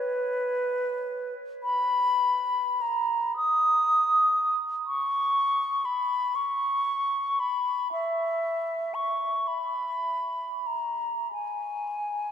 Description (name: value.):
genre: classical, free, expressive piece for unaccompanied flute.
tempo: 30-41 BPM (dotted quarters).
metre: 6/8.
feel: rubato.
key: unclear.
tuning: A4 = 441 Hz.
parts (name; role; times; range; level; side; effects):
hollow silver concert flute; solo; 0.0-12.3 s; B4 to D#6; -24 LUFS; equal; none.
room: wet cathedral reverb, RT60 5.8 s.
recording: minimal, uncompressed stereo recording.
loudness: -24 LUFS.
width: side -9 dB against mid.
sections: 0.0-12.3 A section.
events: none.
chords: none.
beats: | 1.64 3.37 | 4.86 6.35 | 7.92 9.48 | 11.33.